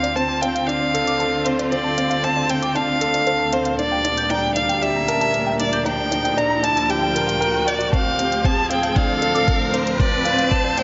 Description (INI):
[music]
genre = piano and strings electronica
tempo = 116 BPM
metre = 4/4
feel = straight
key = D minor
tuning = A4 = 442 Hz
[part]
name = rich violin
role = melody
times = 0.0-10.8 s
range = C5 to Bb5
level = -23 LUFS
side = equal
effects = none
[part]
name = bright symphonic string section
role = sustained chords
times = 0.0-10.8 s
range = D2 to F4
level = -29 LUFS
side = equal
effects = sidechain pumping
[part]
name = warbly dusty pluck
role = arpeggios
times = 0.0-10.8 s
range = C5 to G6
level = -31 LUFS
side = equal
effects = chorus, sidechain pumping, tape echo
[part]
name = clear concert grand piano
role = riff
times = 0.0-10.8 s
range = C4 to D5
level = -26 LUFS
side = equal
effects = none
[part]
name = electronic hi-hat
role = drums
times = 0.0-10.8 s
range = none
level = -33 LUFS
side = equal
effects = overdrive, high-pass filter on hats
[part]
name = riser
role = sound effects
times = 2.5-10.8 s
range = none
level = -32 LUFS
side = equal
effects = none
[part]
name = electronic kick drum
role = drums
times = 7.9-10.6 s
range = none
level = -22 LUFS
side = equal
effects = none
[sound]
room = wet concert hall reverb, RT60 2.1 s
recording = nothing above 7.5 kHz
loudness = -20 LUFS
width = mono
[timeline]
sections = 0.0-10.8 A section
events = build-up 0.0-10.8; riser 2.5-10.8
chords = 0.0 Dm7; 3.8 Gm/D; 7.9 Dm7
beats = 0.17 0.69 1.20 | 1.72 2.24 2.75 3.27 | 3.79 4.31 4.82 5.34 | 5.86 6.38 6.89 7.41 | 7.93 8.44 8.96 9.48 | 10.00 10.51